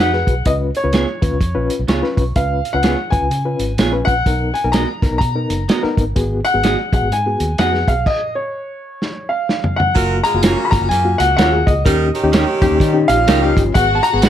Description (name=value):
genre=uptempo 1960s-style soul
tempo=126 BPM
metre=4/4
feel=swing 61% on 8ths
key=F# major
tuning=A4 = 437 Hz
part: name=warm baby grand piano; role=melody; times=0.0-14.3 s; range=C#5 to B5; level=-19 LUFS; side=left 1 dB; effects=plate reverb
part: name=semi-hollow electric guitar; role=stabs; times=0.0-14.3 s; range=G#3 to D#5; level=-21 LUFS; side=right 5 dB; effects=plate reverb
part: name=vintage muted fingered electric bass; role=bass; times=0.0-14.3 s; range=F#1 to D#3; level=-20 LUFS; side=equal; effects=none
part: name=overdriven reed electric piano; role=accompaniment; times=0.1-14.3 s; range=A#3 to C#6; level=-21 LUFS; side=left 3 dB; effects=fast tremolo, plate reverb
part: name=vintage drum kit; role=drums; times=0.1-14.3 s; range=crash cymbal, hi-hat, kick drum, snare drum, toms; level=-18 LUFS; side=equal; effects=none
part: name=bright saxophone section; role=second line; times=10.0-13.6 s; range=C#3 to A#4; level=-21 LUFS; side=right 4 dB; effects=plate reverb
part: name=electric guitar through a small old amp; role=riff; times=12.6-13.7 s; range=E#3 to G4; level=-20 LUFS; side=left 8 dB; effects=none
part: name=warm studio violin section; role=second line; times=13.8-14.3 s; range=F#4 to F#5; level=-21 LUFS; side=right 2 dB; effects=plate reverb
room=light reverb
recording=none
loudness=-14 LUFS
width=side -10 dB against mid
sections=0.0-10.0 A section; 10.0-14.3 B section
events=reed electric piano fill 1.6-2.4; stop 8.1-10.0; drum fill 9.0-10.0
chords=0.5 C#7; 4.3 Bmaj7; 6.2 G#m7; 8.1 N.C.; 10.0 F#maj7; 11.9 D#7; 13.8 G#m7